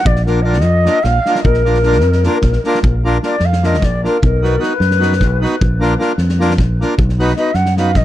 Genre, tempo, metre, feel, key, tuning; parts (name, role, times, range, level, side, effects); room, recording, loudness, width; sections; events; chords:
balkan folk, Balkan wedding band; 303 BPM (eighths); 7/8; straight; A4 = 442 Hz
breathy ney; melody; 0.0-8.0 s; Bb4 to F#5; -18 LUFS; left 1 dB; tape echo
fingered electric bass; bass; 0.1-8.0 s; Bb1 to F#2; -14 LUFS; equal
loose indie drum kit; percussion; 0.1-8.0 s; kick drum, snare drum; -19 LUFS; equal
accordion; accompaniment; 0.3-7.9 s; Bb3 to B4; -18 LUFS; equal
studio ambience; -12 LUFS; side -13 dB against mid
0.0-2.8 A section; 2.8-8.0 B section
ney solo 2.8-8.0
0.1 Bb; 4.2 B; 5.6 Bb; 7.0 B